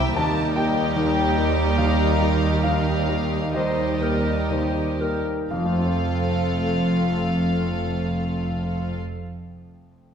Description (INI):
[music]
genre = cinematic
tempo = 58-77 BPM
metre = 3/4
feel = rubato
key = unclear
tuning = A4 = 440 Hz
[part]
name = warm studio violin section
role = melody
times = 0.0-9.0 s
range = Eb5 to A5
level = -31 LUFS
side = left 4 dB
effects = none
[part]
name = rich studio violin section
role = second line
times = 0.0-9.0 s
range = F4 to E5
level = -30 LUFS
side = right 1 dB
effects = none
[part]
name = clear baby grand piano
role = accompaniment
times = 0.0-10.1 s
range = C2 to Bb5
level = -27 LUFS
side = left 2 dB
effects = none
[part]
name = dark studio viola section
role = accompaniment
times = 0.0-8.9 s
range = G3 to E4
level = -30 LUFS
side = right 1 dB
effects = none
[part]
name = dark studio double bass section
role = bass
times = 0.0-9.0 s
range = F1 to Eb2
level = -28 LUFS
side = right 3 dB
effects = none
[part]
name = warm studio cello section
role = bass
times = 0.0-8.9 s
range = C2 to F2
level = -26 LUFS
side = right 1 dB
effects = none
[part]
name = mellow French horn section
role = sustained chords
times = 0.2-8.9 s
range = G3 to Eb4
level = -33 LUFS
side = left 4 dB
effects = none
[part]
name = mellow clarinet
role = second line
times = 3.6-5.5 s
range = Bb4 to C5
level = -28 LUFS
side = equal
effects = none
[sound]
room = wet scoring stage reverb, RT60 1.7 s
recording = minimal, uncompressed stereo recording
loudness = -20 LUFS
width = side -8 dB against mid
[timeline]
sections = 0.0-5.5 A section; 5.5-8.6 B section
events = slowing down 0.0-5.5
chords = 0.2 Eb; 5.5 F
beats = | 0.17 0.96 1.78 | 2.64 3.54 4.50 | 5.51 6.53 7.55